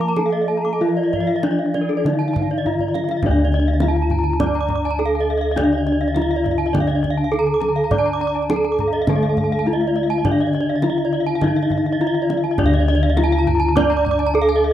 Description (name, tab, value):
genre	Balinese gamelan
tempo	103 BPM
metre	4/4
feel	straight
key	D pelog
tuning	A4 = 439 Hz
part	gamelan-type bronze metallophone	melody	0.0-14.7 s	D4 to D5	-20 LUFS	equal	none
part	mellow hollow silver concert flute	second line	0.0-2.9 s	D5 to Bb5-25c	-31 LUFS	left 5 dB	tape echo
part	gamelan-type bronze metallophone	accompaniment	0.0-14.7 s	D3 to D4	-27 LUFS	left 1 dB	none
part	gamelan-type bronze metallophone	arpeggios	0.0-14.7 s	A4-30c to D6	-27 LUFS	left 7 dB	none
part	gamelan-type bossed gongs	bass	0.0-14.7 s	D2 to D5	-22 LUFS	equal	none
part	kendang	percussion	0.0-14.4 s	none	-25 LUFS	right 2 dB	none
part	gamelan-type bronze metallophone	arpeggios	0.1-14.6 s	D5 to D6	-27 LUFS	right 6 dB	none
room	small room ambience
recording	dry, close 1970s-style studio recording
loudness	-16 LUFS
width	side -11 dB against mid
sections	0.0-3.2 A section; 3.2-14.7 B section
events	drum fill 2.6-3.2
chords	none